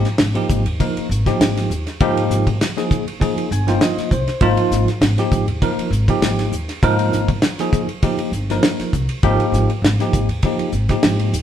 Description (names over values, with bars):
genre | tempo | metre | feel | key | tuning
electric jazz fusion | 100 BPM | 4/4 | swing 53% on 16ths | unclear | A4 = 443 Hz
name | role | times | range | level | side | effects
bell-like tine electric piano | accompaniment | 0.0-11.3 s | F3 to Ab5 | -20 LUFS | equal | medium stereo tremolo
upright bass | bass | 0.0-11.4 s | G1 to Ab2 | -20 LUFS | equal | none
damped 70s drum kit | drums | 0.1-11.4 s | hi-hat, kick drum, ride cymbal, snare drum | -20 LUFS | equal | none
room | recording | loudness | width
moderate stone room reverb, RT60 1.2 s | band playing live in one room | -16 LUFS | side -10 dB against mid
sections
0.0-11.4 A section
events
tine electric piano fill 3.2-4.4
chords
0.0 Abmaj7(no3)